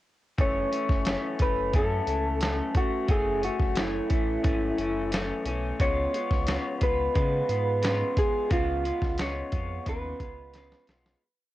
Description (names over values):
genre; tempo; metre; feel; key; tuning
indie pop, bedroom pop; 89 BPM; 4/4; straight; unclear; A4 = 440 Hz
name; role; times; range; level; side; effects
electric guitar through a small old amp; melody; 0.4-10.9 s; E4 to C#5; -28 LUFS; equal; wide subtle chorus
electric guitar through a small old amp; accompaniment; 0.4-11.2 s; F#2 to E#4; -32 LUFS; left 2 dB; lush chorus, warbly pitch drift
sub bass with octave; bass; 0.4-11.2 s; F#1 to C#3; -33 LUFS; equal; transformer saturation
dusty soul sampler-style drum kit; drums; 0.4-11.2 s; hi-hat, kick drum, snare drum; -28 LUFS; equal; cassette tape
room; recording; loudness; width
light reverb; home recording on cassette; -24 LUFS; side -15 dB against mid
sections
0.4-11.2 verse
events
fade-out 8.5-11.2; drum fill 10.5-11.2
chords
0.4 F#m7; 5.8 C#7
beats
| 0.38 1.06 1.74 2.41 | 3.09 3.77 4.44 5.12 | 5.80 6.47 7.15 7.83 | 8.51 9.19 9.86 10.54